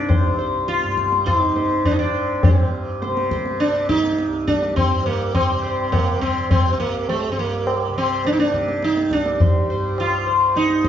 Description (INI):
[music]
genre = indian classical, Hindustani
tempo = 103 BPM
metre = 4/4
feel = straight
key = C raga kafi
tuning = A4 = 436 Hz
[part]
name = sitar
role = melody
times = 0.0-10.9 s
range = A3 to C5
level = -19 LUFS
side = equal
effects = none
[part]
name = tanpura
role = drone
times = 0.0-10.9 s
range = C2 to C3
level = -27 LUFS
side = right 2 dB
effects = none
[part]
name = tabla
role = percussion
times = 0.1-10.9 s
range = none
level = -21 LUFS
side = left 1 dB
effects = none
[sound]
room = wet studio reverb, RT60 0.7 s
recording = heard from further back in the room, nothing above 7.7 kHz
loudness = -17 LUFS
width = side -10 dB against mid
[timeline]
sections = 0.0-2.4 A section; 2.4-10.9 B section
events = none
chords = none